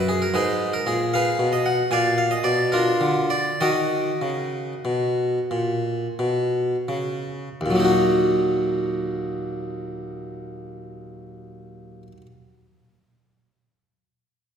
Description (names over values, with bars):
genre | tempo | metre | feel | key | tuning
classical, baroque-style suite movement for harpsichord | 54-78 BPM (dotted quarters) | 12/8 | rubato | Eb minor | A4 = 440 Hz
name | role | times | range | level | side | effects
harpsichord | solo | 0.0-12.3 s | Eb2 to Ab5 | -21 LUFS | equal | none
room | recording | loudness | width
wet concert hall reverb, RT60 2.1 s | heard from further back in the room | -20 LUFS | side -8 dB against mid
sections
0.0-7.6 A section; 7.6-11.9 B section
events
slowing down 1.4-7.6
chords
0.4 Abm; 1.9 Bb; 3.6 Ebm